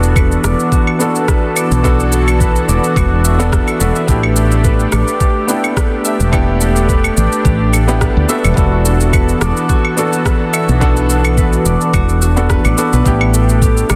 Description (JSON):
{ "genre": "sunset chillout", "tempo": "107 BPM", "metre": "4/4", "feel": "swing 54% on 16ths", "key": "unclear", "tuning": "A4 = 440 Hz", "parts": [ { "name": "clear concert grand piano", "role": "accompaniment", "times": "0.0-14.0 s", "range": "B3 to A4", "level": "-22 LUFS", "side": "equal", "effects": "delay" }, { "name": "lush unison pad", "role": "sustained chords", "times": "0.0-14.0 s", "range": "E3 to A4", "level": "-21 LUFS", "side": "equal", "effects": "chorus" }, { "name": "concert harp", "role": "arpeggios", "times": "0.0-14.0 s", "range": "F#4 to E5", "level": "-23 LUFS", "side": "equal", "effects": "low-pass filter, delay" }, { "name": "woody fretless electric bass", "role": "bass", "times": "0.0-14.0 s", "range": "E1 to D2", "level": "-16 LUFS", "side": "equal", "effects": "none" }, { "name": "electronic shaker, claves and rim click", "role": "drums", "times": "0.0-14.0 s", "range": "none", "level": "-24 LUFS", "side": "equal", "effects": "none" }, { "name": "electronic kick drum", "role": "drums", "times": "0.2-13.7 s", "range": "none", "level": "-17 LUFS", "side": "equal", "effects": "none" } ], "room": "light reverb", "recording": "dense, heavily limited modern master", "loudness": "-13 LUFS", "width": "mono", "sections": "0.0-14.0 A section", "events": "none", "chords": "0.0 E9sus4; 4.1 A9sus4; 8.3 E9sus4; 13.1 A9sus4", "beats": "0.16 0.72 1.28 | 1.84 2.40 2.96 3.52 | 4.09 4.65 5.21 5.77 | 6.33 6.89 7.45 8.01 | 8.57 9.13 9.69 10.25 | 10.81 11.38 11.94 12.50 | 13.06 13.62" }